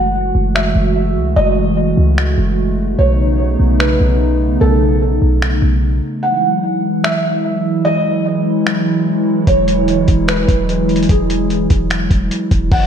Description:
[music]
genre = hip hop, atmospheric cloud-rap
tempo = 148 BPM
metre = 4/4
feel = half-time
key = unclear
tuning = A4 = 437 Hz
[part]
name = felt-muted upright piano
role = melody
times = 0.0-12.9 s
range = G#4 to F#5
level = -19 LUFS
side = right 1 dB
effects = lush chorus, analog delay
[part]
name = hollow soft pad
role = sustained chords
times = 0.0-12.9 s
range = C#3 to F#4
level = -17 LUFS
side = right 1 dB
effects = chorus, sidechain pumping
[part]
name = clean 808-style bass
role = bass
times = 0.0-6.0, 9.5-12.9 s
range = E1 to C#2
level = -16 LUFS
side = equal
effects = none
[part]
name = lo-fi sampler-style drum kit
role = drums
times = 0.6-12.8 s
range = crash cymbal, finger snaps, hi-hat, kick drum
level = -18 LUFS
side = equal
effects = overdrive
[sound]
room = moderate lush hall reverb, RT60 1.9 s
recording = dreamy mix soaked in reverb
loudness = -12 LUFS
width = side -8 dB against mid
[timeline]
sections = 0.0-12.7 A section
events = kick muted 6.2-7.0; hi-hats muted 12.7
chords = 0.0 F#m9; 3.0 B9; 6.2 Eadd9

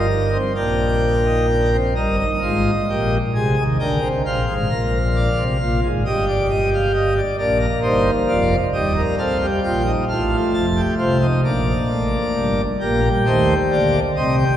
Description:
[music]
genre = classical, baroque-style 4-part fugue for pipe organ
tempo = 44 BPM (dotted quarters)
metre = 6/8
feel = straight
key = Eb major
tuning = A4 = 440 Hz
[part]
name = pipe organ, plenum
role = solo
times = 0.0-14.6 s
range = Eb1 to A5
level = -16 LUFS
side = equal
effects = none
[sound]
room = wet cathedral reverb, RT60 5.1 s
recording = heard from further back in the room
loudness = -16 LUFS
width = side -11 dB against mid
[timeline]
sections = 0.0-2.0 A section; 2.0-12.8 B section; 12.8-14.6 C section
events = none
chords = 0.0 Eb/G; 0.6 Bb; 2.0 Eb/G; 3.4 Ab/C; 4.7 Bb7; 6.1 Eb/G; 7.4 Bb; 8.7 Eb; 10.1 F7; 11.4 Bb; 12.8 Gm/Bb

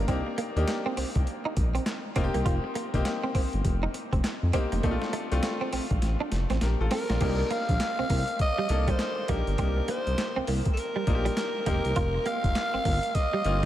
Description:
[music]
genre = R&B, new jack swing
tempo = 101 BPM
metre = 4/4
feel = swing 62% on 16ths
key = C dorian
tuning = A4 = 440 Hz
[part]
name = bright grand piano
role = accompaniment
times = 0.0-13.7 s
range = A3 to Bb4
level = -34 LUFS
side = left 3 dB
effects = none
[part]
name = direct-recorded clean electric guitar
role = riff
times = 0.0-13.7 s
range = G3 to F4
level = -34 LUFS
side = right 4 dB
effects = ensemble chorus
[part]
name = smooth synth bass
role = bass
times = 0.0-13.7 s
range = F1 to F2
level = -28 LUFS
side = equal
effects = none
[part]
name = boom bap sampler-style drum kit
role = drums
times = 0.1-13.7 s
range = crash cymbal, handclaps, hi-hat, kick drum, snare drum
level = -30 LUFS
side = equal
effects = overdrive
[part]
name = growling alto saxophone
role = melody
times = 6.9-13.7 s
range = A4 to F5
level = -29 LUFS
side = equal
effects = diffuse ambient delay
[sound]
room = moderate cathedral reverb, RT60 6.5 s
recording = dreamy mix soaked in reverb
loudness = -25 LUFS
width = side -13 dB against mid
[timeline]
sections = 0.0-7.2 A section; 7.2-13.7 B section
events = drum fill 6.0-7.2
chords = 0.0 Cm7; 2.2 F7sus4; 4.8 Bbmaj7; 7.2 Cm7; 11.7 F7sus4

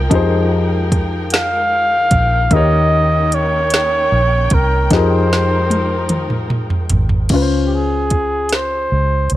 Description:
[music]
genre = slow six-eight R&B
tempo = 50 BPM (dotted quarters)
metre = 6/8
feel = straight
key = F minor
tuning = A4 = 443 Hz
[part]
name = clear baby grand piano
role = accompaniment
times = 0.0-9.4 s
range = Db3 to Db5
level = -21 LUFS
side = left 5 dB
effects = none
[part]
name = warm studio string section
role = sustained chords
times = 0.0-7.3 s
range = Eb3 to G5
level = -26 LUFS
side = equal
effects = none
[part]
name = vintage muted fingered electric bass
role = bass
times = 0.0-9.4 s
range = Ab1 to F2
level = -18 LUFS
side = equal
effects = none
[part]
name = smooth R&B drum kit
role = drums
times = 0.1-9.4 s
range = crash cymbal, hi-hat, kick drum, snare drum, toms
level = -17 LUFS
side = right 1 dB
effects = none
[part]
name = warm flugelhorn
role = melody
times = 1.3-9.4 s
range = G4 to F5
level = -17 LUFS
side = equal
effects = tape echo
[sound]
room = light reverb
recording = none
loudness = -13 LUFS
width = side -14 dB against mid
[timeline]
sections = 0.0-7.3 A section; 7.3-9.4 B section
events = drum fill 4.9-7.3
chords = 0.0 Fm11; 2.5 Eb7; 4.9 Fm11; 7.3 Dbmaj7

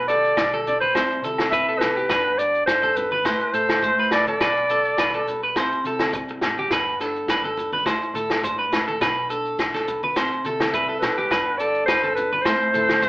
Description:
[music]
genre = highlife guitar band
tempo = 104 BPM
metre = 4/4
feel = straight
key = G major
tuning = A4 = 440 Hz
[part]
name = breathy clarinet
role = melody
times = 0.0-5.4, 10.7-13.1 s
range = B4 to E5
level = -20 LUFS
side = equal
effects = none
[part]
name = flamenco guitar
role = accompaniment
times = 0.0-13.1 s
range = G2 to B4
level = -33 LUFS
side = left 1 dB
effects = none
[part]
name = electric guitar at the edge of break-up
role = arpeggios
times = 0.0-13.1 s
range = G4 to C5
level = -24 LUFS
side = right 1 dB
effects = none
[part]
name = hollow-body short-scale fingered electric bass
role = bass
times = 0.0-13.1 s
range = G1 to C3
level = -41 LUFS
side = equal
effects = none
[part]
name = maracas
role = percussion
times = 0.1-13.1 s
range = none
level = -39 LUFS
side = left 1 dB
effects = none
[part]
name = vintage drum kit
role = drums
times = 0.4-13.1 s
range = kick drum, snare drum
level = -26 LUFS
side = equal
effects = none
[part]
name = agogo bells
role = percussion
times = 0.4-13.0 s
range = none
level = -28 LUFS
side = left 1 dB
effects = none
[part]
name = congas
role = percussion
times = 0.5-13.0 s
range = none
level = -38 LUFS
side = equal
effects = none
[sound]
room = moderate small room reverb, RT60 0.5 s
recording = band playing live in one room, AM radio sound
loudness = -19 LUFS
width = side -22 dB against mid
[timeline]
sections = 0.0-13.1 A section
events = none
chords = 0.0 G/B; 0.9 C; 2.1 G; 3.3 Am; 4.4 G/B; 5.6 C; 6.7 G; 7.9 Am; 9.0 Bm7; 10.2 C; 11.3 G; 12.5 Am

